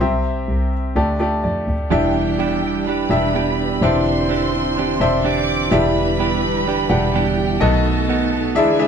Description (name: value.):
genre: pop.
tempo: 126 BPM.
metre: 4/4.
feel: swing 56% on 16ths.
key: unclear.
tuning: A4 = 440 Hz.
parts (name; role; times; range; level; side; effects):
clear baby grand piano; accompaniment; 0.0-8.9 s; B2 to F#5; -20 LUFS; left 2 dB; none.
warm double bass; bass; 0.0-8.5 s; E1 to F2; -22 LUFS; equal; none.
warm studio violin section; second line; 1.9-8.9 s; G4 to D6; -25 LUFS; equal; none.
mellow tonewheel organ; sustained chords; 1.9-8.9 s; B2 to G4; -28 LUFS; left 2 dB; chorus vibrato, fast rotary speaker.
direct-recorded clean electric guitar; riff; 1.9-8.9 s; E2 to G4; -21 LUFS; right 8 dB; none.
room: moderate small room reverb, RT60 0.5 s.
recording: band playing live in one room.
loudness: -16 LUFS.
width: side -7 dB against mid.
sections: 0.0-1.9 A section; 1.9-8.9 B section.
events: grand piano fill 1.2-1.9.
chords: 0.0 C; 1.0 Dsus4; 1.9 Em7; 3.8 Cadd9/E; 5.7 Em7; 7.6 B7.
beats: | 0.01 0.49 0.96 1.44 | 1.92 2.39 2.87 3.34 | 3.81 4.29 4.76 5.24 | 5.71 6.19 6.66 7.14 | 7.61 8.09 8.56.